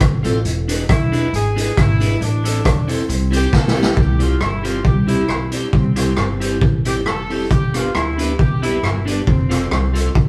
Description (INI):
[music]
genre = ska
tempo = 136 BPM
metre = 4/4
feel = swing 53% on 8ths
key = C major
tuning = A4 = 440 Hz
[part]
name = upright bass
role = bass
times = 0.0-10.3 s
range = E1 to E2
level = -23 LUFS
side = equal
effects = none
[part]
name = raw garage drum kit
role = drums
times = 0.0-10.3 s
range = hi-hat, kick drum, rim click, snare drum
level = -20 LUFS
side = equal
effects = none
[part]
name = electric guitar at the edge of break-up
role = accompaniment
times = 0.2-10.1 s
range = D4 to C5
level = -28 LUFS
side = equal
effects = none
[part]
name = tonewheel organ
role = stabs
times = 0.2-10.1 s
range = B3 to A4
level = -30 LUFS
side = equal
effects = slow rotary speaker
[part]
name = tambourine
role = percussion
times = 0.2-3.9 s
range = none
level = barely audible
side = none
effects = none
[part]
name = clear horn section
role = melody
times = 0.9-10.2 s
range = C4 to A4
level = -27 LUFS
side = equal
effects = none
[sound]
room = moderate stone room reverb, RT60 1.2 s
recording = band playing live in one room, vinyl crackle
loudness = -17 LUFS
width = mono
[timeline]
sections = 0.0-4.0 A section; 4.0-10.3 B section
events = drum fill 3.5-4.0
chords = 0.4 E7; 2.2 Am; 3.1 C; 7.5 G; 9.3 F